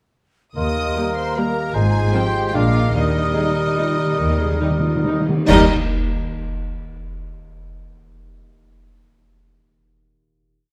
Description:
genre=classical, orchestral ballroom waltz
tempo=134-163 BPM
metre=3/4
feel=rubato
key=Eb major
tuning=A4 = 440 Hz
part: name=warm symphonic violin section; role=melody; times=0.6-5.7 s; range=Eb5 to Eb6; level=-30 LUFS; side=equal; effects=none
part: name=mellow large flute ensemble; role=second line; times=0.6-5.7 s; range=Bb5 to Eb6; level=-30 LUFS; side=equal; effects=none
part: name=warm clarinet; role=second line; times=0.6-5.7 s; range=D4 to Bb4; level=-31 LUFS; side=equal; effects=none
part: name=warm oboe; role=second line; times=0.6-5.7 s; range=Bb4 to C5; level=-31 LUFS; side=equal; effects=none
part: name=warm symphonic violin section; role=second line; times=0.6-5.7 s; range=Eb4 to Eb5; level=-32 LUFS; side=equal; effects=none
part: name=warm bassoon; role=accompaniment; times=0.6-5.7 s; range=G3 to Bb3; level=-28 LUFS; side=equal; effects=none
part: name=concert harp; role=arpeggios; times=0.6-6.8 s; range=Ab2 to Eb5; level=-29 LUFS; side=equal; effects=none
part: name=dark studio double bass section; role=bass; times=0.6-5.7 s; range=Ab1 to Eb2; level=-26 LUFS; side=equal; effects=none
part: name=dark symphonic cello section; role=bass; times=0.6-5.7 s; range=Eb2 to Eb3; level=-27 LUFS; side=equal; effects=none
part: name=warm French horn section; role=sustained chords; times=0.9-5.7 s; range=F3 to Eb4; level=-28 LUFS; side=equal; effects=none
part: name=rich symphonic viola section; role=accompaniment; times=1.0-5.7 s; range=F3 to Eb4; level=-28 LUFS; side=equal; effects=none
part: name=cymbal swell, clash cymbals and concert bass drum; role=percussion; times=2.9-6.3 s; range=none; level=-27 LUFS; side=equal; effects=none
part: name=timpani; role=percussion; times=2.9-5.7 s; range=Eb3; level=-26 LUFS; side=equal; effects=none
room=light reverb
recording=close, detailed microphones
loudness=-19 LUFS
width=mono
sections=0.6-5.5 A section; 5.5-6.8 final chord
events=slowing down 2.3-5.5; timpani fill 2.9-5.5; band accent 5.5-5.9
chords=0.6 Eb; 1.8 Fm/Ab; 2.5 Bb7; 2.9 Eb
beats=| 0.57 0.96 1.37 | 1.75 2.14 2.55 | 2.95 3.36 3.78 | 4.19 4.62 5.06 | 5.49 5.90 6.34

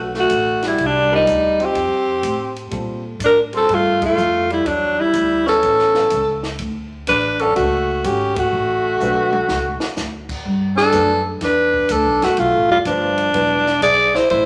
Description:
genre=jazz, small-group swing and bop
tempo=124 BPM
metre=4/4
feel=swing 68% on 8ths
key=D major, G major from 10.5 s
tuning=A4 = 439 Hz
part: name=upright bass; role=bass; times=0.0-14.5 s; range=E1 to Bb2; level=-29 LUFS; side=equal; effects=none
part: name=clear tenor saxophone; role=second line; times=0.1-14.5 s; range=F3 to Ab4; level=-26 LUFS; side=equal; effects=none
part: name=compact cocktail drum kit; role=drums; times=0.1-14.5 s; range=crash cymbal, hi-hat, kick drum, ride cymbal, snare drum, toms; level=-34 LUFS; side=equal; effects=none
part: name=growling alto saxophone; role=melody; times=0.2-14.5 s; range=D4 to D5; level=-18 LUFS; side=equal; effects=none
part: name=warm upright piano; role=accompaniment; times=1.1-13.6 s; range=F#3 to E5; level=-30 LUFS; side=equal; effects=none
room=wet large studio reverb, RT60 1.2 s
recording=none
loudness=-17 LUFS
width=mono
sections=0.0-10.5 A section; 10.5-14.5 B section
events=band accent 3.9, 8.3; drum fill 9.0-10.0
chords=0.0 Gmaj9 (rootless); 0.8 Cm9; 1.8 Fadd9; 2.7 Bb5; 4.7 Em7; 5.6 Aadd9; 6.6 Dmaj7; 10.5 Gmaj9; 12.4 Bm7b5; 13.3 E5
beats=0.30 | 0.79 1.27 1.75 2.24 | 2.72 3.21 3.69 4.17 | 4.66 5.14 5.62 6.11 | 6.59 7.08 7.56 8.04 | 8.52 9.01 9.49 9.97 | 10.45 10.94 11.42 11.90 | 12.38 12.86 13.34 13.82 | 14.31

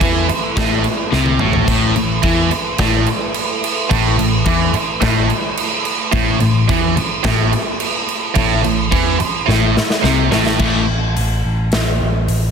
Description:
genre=hard rock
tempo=108 BPM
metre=4/4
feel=straight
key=A minor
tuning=A4 = 443 Hz
part: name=lush unison pad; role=sustained chords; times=0.0-10.6 s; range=A3 to B4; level=-29 LUFS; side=right 2 dB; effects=chorus, phaser
part: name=overdriven semi-hollow guitar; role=riff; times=0.0-10.8 s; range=A2 to A3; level=-19 LUFS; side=left 7 dB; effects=phaser
part: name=tight distorted guitar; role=riff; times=0.0-10.8 s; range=A2 to A3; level=-19 LUFS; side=right 14 dB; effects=distortion
part: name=picked electric bass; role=bass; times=0.0-12.5 s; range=A1 to E2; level=-19 LUFS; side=equal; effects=none
part: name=big rock drum kit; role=drums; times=0.0-12.4 s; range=crash cymbal, hi-hat, kick drum, snare drum, splash cymbal, toms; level=-18 LUFS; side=right 1 dB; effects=none
room=light reverb, small room ambience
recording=dense, heavily limited modern master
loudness=-14 LUFS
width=side -6 dB against mid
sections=0.0-10.6 A section; 10.6-12.5 B section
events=drum fill 1.1-1.7, 9.5-10.6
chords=0.0 Am; 10.6 A5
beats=0.02 0.58 1.14 | 1.69 2.25 2.80 3.36 | 3.92 4.47 5.03 5.59 | 6.14 6.70 7.26 7.82 | 8.38 8.93 9.49 10.05 | 10.61 11.17 11.73 12.29

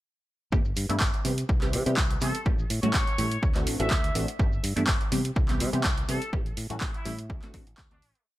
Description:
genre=filtered disco house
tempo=124 BPM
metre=4/4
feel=swing 54% on 16ths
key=G major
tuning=A4 = 440 Hz
part: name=funky polysynth comp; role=accompaniment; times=0.5-8.0 s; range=E3 to G4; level=-31 LUFS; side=right 1 dB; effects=chorus, phaser, cassette tape, sidechain pumping, low-pass filter
part: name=fingered electric bass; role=bass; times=0.5-8.1 s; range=G1 to C3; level=-30 LUFS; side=equal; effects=sidechain pumping, low-pass filter
part: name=electronic kick drum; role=drums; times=0.5-7.9 s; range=none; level=-27 LUFS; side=equal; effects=overdrive
part: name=maracas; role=percussion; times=0.5-8.2 s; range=none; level=-46 LUFS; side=left 6 dB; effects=none
part: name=punchy analog drum machine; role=drums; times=0.8-8.2 s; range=handclaps, hi-hat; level=-31 LUFS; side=right 1 dB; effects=overdrive, sidechain pumping on hats
part: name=clear trumpet section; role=melody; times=2.2-8.3 s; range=D4 to E5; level=-35 LUFS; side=equal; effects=sidechain pumping, low-pass filter, digital delay
room=digital ambience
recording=bright 1980s-style digital production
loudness=-24 LUFS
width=side -16 dB against mid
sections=0.5-8.3 groove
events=fade-out 5.7-8.3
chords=0.5 G5; 1.2 Cmaj7; 2.5 A7; 3.4 D9; 4.4 G5; 5.1 Cmaj7; 6.3 A7; 7.3 D9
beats=| 0.52 1.01 1.49 1.98 | 2.46 2.94 3.43 3.91 | 4.39 4.88 5.36 5.85 | 6.33 6.81 7.30 7.78

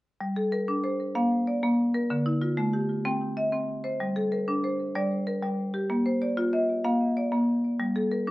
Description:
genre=southern african traditional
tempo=126 BPM (dotted quarters)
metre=12/8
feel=straight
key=G equiheptatonic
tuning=A4 = 439 Hz
part: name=marimba with hard mallets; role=arpeggios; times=0.2-8.3 s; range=D3 to G5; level=-24 LUFS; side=equal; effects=tape echo
room=moderate studio reverb, RT60 0.5 s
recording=nothing above 10.7 kHz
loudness=-24 LUFS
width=side -18 dB against mid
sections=0.2-8.3 A section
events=none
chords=0.2 Gm; 1.2 Bb; 2.1 Dm; 3.1 C; 4.0 Gm; 5.9 Bb; 7.8 Gm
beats=| 0.20 0.68 1.15 1.63 | 2.10 2.58 3.05 3.53 | 4.00 4.47 4.95 5.42 | 5.90 6.37 6.85 7.32 | 7.80 8.27

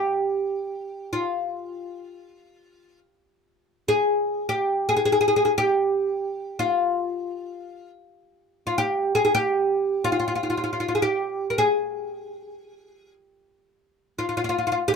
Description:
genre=Persian modal ensemble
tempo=free time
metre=none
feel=none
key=unclear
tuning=A4 = 441 Hz
part: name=oud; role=solo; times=0.0-14.9 s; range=F4 to Bb4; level=-22 LUFS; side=equal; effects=none
room=moderate small room ambience, RT60 0.5 s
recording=close, detailed microphones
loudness=-22 LUFS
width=side -5 dB against mid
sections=0.0-15.0 A section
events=none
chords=none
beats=free time

